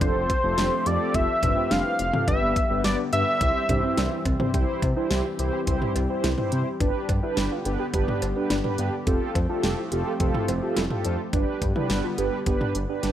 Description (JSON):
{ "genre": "synth-pop", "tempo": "106 BPM", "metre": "4/4", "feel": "straight", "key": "C major", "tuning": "A4 = 439 Hz", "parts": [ { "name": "octave-doubled lead", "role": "melody", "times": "0.0-4.2 s", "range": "C5 to F5", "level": "-25 LUFS", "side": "equal", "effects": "chorus" }, { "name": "mellow synth brass", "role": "accompaniment", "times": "0.0-13.1 s", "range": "B3 to C5", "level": "-28 LUFS", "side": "right 2 dB", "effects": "chorus" }, { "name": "chorused pulse-width pad", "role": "sustained chords", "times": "0.0-13.1 s", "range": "D3 to G4", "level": "-32 LUFS", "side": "left 1 dB", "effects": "none" }, { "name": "warbly dusty pluck", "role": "arpeggios", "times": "0.0-13.1 s", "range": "B3 to G4", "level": "-34 LUFS", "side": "equal", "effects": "chorus, analog delay" }, { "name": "smooth synth bass", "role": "bass", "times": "0.0-13.1 s", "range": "F1 to C3", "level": "-28 LUFS", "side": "equal", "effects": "none" }, { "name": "pop drum kit", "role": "drums", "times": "0.0-13.1 s", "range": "cowbell, hi-hat, kick drum, snare drum, toms", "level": "-27 LUFS", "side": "equal", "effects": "none" } ], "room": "light reverb", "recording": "none", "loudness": "-22 LUFS", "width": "side -11 dB against mid", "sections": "0.0-4.5 A section; 4.5-13.1 B section", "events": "none", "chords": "0.0 Fadd9; 2.3 G; 3.4 C; 6.8 G; 9.1 Fadd9; 11.3 G", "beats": "| 0.01 0.58 1.15 1.71 | 2.28 2.84 3.41 3.98 | 4.54 5.11 5.67 6.24 | 6.80 7.37 7.94 8.50 | 9.07 9.63 10.20 10.77 | 11.33 11.90 12.46 13.03" }